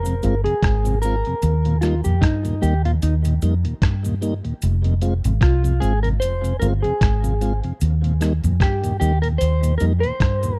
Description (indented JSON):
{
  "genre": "roots reggae",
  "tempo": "75 BPM",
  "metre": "4/4",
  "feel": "swing 57% on 16ths",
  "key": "unclear",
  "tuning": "A4 = 440 Hz",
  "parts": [
    { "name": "mellow electric guitar", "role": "accompaniment", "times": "0.0-10.6 s", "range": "Eb4 to C5", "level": "-27 LUFS", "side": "equal", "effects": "phaser, dub echo" },
    { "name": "vintage muted fingered electric bass", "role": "bass", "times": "0.0-10.6 s", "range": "F1 to G2", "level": "-21 LUFS", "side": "equal", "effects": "none" },
    { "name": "mellow tonewheel organ", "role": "accompaniment", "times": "0.1-10.5 s", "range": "Eb2 to F4", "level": "-28 LUFS", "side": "equal", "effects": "slow rotary speaker, dub echo" },
    { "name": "lo-fi sampler-style drum kit", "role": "drums", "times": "0.1-10.6 s", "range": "hi-hat, kick drum, rim click", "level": "-23 LUFS", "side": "equal", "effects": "none" },
    { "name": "cabasa", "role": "percussion", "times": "0.1-10.6 s", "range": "none", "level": "-42 LUFS", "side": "equal", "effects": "none" }
  ],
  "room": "digital ambience",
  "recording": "dry, close 1970s-style studio recording",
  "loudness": "-20 LUFS",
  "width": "mono",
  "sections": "0.0-10.6 A section",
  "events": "clean electric guitar solo 0.0-10.6",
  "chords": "0.0 Fm; 1.4 Eb; 4.6 Fm; 7.8 Eb"
}